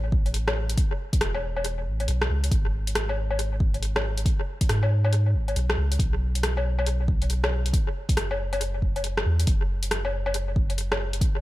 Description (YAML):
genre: future garage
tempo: 138 BPM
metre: 4/4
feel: swing 63% on 16ths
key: unclear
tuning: A4 = 440 Hz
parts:
  - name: soft dub sub bass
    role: bass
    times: 0.0-11.2 s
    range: E1 to G#2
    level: -25 LUFS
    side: equal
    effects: tube saturation, sidechain pumping
  - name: electronic kick drum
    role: drums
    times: 0.1-11.3 s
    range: none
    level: -24 LUFS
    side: equal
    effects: none
  - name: deep house drum kit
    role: drums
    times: 0.3-11.3 s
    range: hi-hat, rim click, woodblock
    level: -29 LUFS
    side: left 1 dB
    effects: analog delay
room: little or no reverb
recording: echo-heavy mix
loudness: -23 LUFS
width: side -16 dB against mid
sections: 0.0-11.4 A section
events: none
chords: none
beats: 0.34 | 0.78 1.21 1.65 2.08 | 2.51 2.95 3.38 3.82 | 4.25 4.69 5.12 5.56 | 5.99 6.43 6.86 7.30 | 7.73 8.17 8.60 9.04 | 9.47 9.91 10.34 10.78 | 11.21